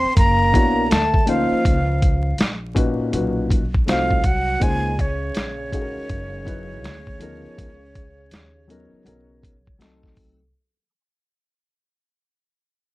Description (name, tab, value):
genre	hip hop, jazz-hop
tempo	81 BPM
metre	4/4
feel	swing 64% on 16ths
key	Db major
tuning	A4 = 440 Hz
part	breathy concert flute	melody	0.0-9.8 s	Db5 to C6	-23 LUFS	equal	slapback echo, plate reverb
part	dark trombone	second line	0.0-9.8 s	Db3 to C4	-28 LUFS	right 3 dB	plate reverb
part	upright bass	bass	0.0-10.5 s	Gb1 to Eb2	-25 LUFS	equal	none
part	boom bap sampler-style drum kit	drums	0.2-10.4 s	hi-hat, kick drum, snare drum	-20 LUFS	equal	none
part	dark concert grand piano	accompaniment	0.5-10.4 s	Bb2 to Db5	-24 LUFS	left 3 dB	none
room	light reverb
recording	dark, warm production, vinyl crackle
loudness	-17 LUFS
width	side -19 dB against mid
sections	0.0-10.5 A section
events	fade-out 0.0-10.5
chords	0.2 Gb; 0.9 D5; 1.7 Db69; 3.1 Cbmaj9; 3.9 Cdim7; 4.6 Dbmaj13; 6.1 Gb69; 6.8 Db13b9/D; 7.6 Cbmaj9; 9.8 Cdim7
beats	0.17 0.91 | 1.65 2.39 3.13 3.88 | 4.62 5.36 6.10 6.84 | 7.58 8.32 9.06 9.80